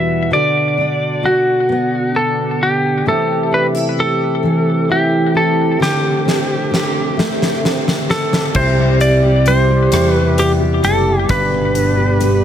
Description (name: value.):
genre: six-eight pop ballad.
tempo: 44 BPM (dotted quarters).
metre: 6/8.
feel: straight.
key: unclear.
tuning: A4 = 441 Hz.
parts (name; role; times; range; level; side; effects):
clean lap steel guitar; melody; 0.0-12.4 s; F#4 to E5; -17 LUFS; equal; ping-pong delay.
fingerpicked steel-string acoustic guitar; accompaniment; 0.0-12.4 s; E2 to G4; -18 LUFS; equal; double-tracked left and right.
tonewheel organ; sustained chords; 0.0-12.4 s; B2 to F#5; -21 LUFS; equal; stopped rotary speaker.
huge arena drum kit; drums; 5.8-12.4 s; crash cymbal, hi-hat, kick drum, rim click, snare drum; -21 LUFS; left 1 dB; none.
mellow fretless electric bass; bass; 8.5-12.4 s; F#1 to E2; -16 LUFS; equal; none.
room: moderate studio reverb, RT60 0.5 s.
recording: none.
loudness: -13 LUFS.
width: side -9 dB against mid.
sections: 0.0-8.6 A section; 8.6-12.4 B section.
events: drum fill 5.8-8.6.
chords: 0.3 Bm; 3.1 C6; 5.8 D7sus4; 8.6 Cmaj7; 11.3 G.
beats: | 0.32 1.69 | 3.06 4.43 | 5.81 7.18 | 8.55 9.92 | 11.29.